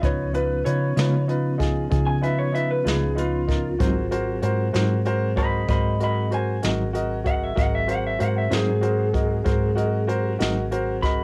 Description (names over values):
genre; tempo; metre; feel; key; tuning
slow blues; 64 BPM (dotted quarters); 12/8; straight; unclear; A4 = 442 Hz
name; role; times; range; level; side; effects
electric guitar through a small old amp; second line; 0.0-11.2 s; F4 to Cb6; -30 LUFS; equal; cassette tape
warm grand piano; accompaniment; 0.0-11.2 s; Eb4 to Eb5; -29 LUFS; equal; cassette tape
mellow tonewheel organ; sustained chords; 0.0-11.2 s; F3 to Ab4; -36 LUFS; equal; slow rotary speaker, cassette tape
hollow-body short-scale fingered electric bass; bass; 0.0-11.2 s; Ab1 to Db3; -27 LUFS; equal; none
jazz brush drum kit; drums; 0.0-11.2 s; hi-hat, kick drum, snare drum; -28 LUFS; equal; none
mellow electric guitar; accompaniment; 1.0-10.6 s; Ab2 to F4; -30 LUFS; equal; tremolo, cassette tape
room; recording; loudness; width
little or no reverb; home recording on cassette; -23 LUFS; mono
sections
0.0-11.2 A section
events
clean electric guitar solo 0.0-11.2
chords
0.0 Db7; 3.8 Ab7